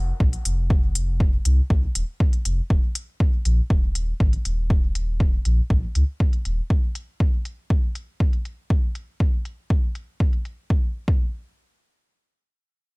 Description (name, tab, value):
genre	dub techno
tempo	120 BPM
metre	4/4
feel	straight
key	unclear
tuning	A4 = 440 Hz
part	soft dub sub bass	bass	0.0-6.6 s	Eb1 to Db2	-22 LUFS	equal	tube saturation, sidechain pumping
part	electronic kick drum	drums	0.2-11.2 s	none	-20 LUFS	equal	small room reverb
part	electronic hi-hat	drums	0.3-10.6 s	none	-30 LUFS	left 1 dB	low-pass filter on hats, small room reverb
room	little or no reverb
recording	none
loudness	-20 LUFS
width	side -30 dB against mid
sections	0.0-10.7 A section; 10.7-13.0 B section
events	none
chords	none